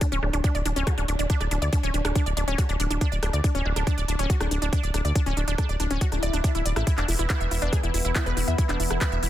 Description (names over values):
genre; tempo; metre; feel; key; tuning
psychedelic trance; 140 BPM; 4/4; straight; unclear; A4 = 440 Hz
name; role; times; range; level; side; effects
wide unison pluck; riff; 0.0-9.3 s; C#4 to E5; -29 LUFS; equal; auto-pan, cassette tape, sidechain pumping, tape echo
electronic kick drum; drums; 0.0-9.1 s; none; -23 LUFS; equal; none
techno drum kit; drums; 0.0-9.3 s; handclaps, hi-hat, rim click; -32 LUFS; left 1 dB; soft clipping on snare
round analog bass; bass; 0.1-9.3 s; D1 to E2; -26 LUFS; equal; none
swell; sound effects; 6.1-6.9 s; none; -33 LUFS; left 4 dB; none
overtone-sweeping drone; sustained chords; 7.2-9.3 s; E3 to B3; -32 LUFS; equal; chorus, built-in reverb, sidechain pumping
room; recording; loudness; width
little or no reverb; dense, heavily limited modern master; -22 LUFS; side -13 dB against mid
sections
0.0-9.3 A section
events
swell 6.1-6.9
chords
0.0 D5; 6.9 E5